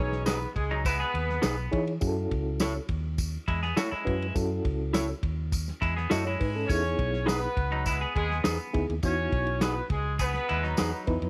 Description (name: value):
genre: uptempo 1960s-style soul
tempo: 103 BPM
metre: 4/4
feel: straight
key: E major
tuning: A4 = 442 Hz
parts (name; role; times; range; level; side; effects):
- clear horn section; second line; 0.0-1.7, 6.7-11.0 s; G#3 to C#5; -34 LUFS; equal; none
- mellow reed electric piano; accompaniment; 0.0-11.3 s; E3 to D#5; -34 LUFS; equal; fast tremolo
- semi-hollow electric guitar; riff; 0.0-11.3 s; F#3 to G#4; -35 LUFS; equal; none
- vintage muted fingered electric bass; bass; 0.0-11.3 s; B1 to E3; -34 LUFS; equal; none
- warm soul drum kit; drums; 0.1-11.3 s; hi-hat, kick drum, ride cymbal, snare drum; -34 LUFS; equal; none
- electric guitar through a small old amp; stabs; 0.3-10.9 s; D#4 to C#5; -34 LUFS; equal; none
- tambourine; percussion; 0.3-10.9 s; none; -44 LUFS; equal; none
room: small room reverb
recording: none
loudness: -28 LUFS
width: mono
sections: 0.0-11.3 A section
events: none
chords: 0.0 Emaj7; 2.0 F#m7; 6.7 Emaj7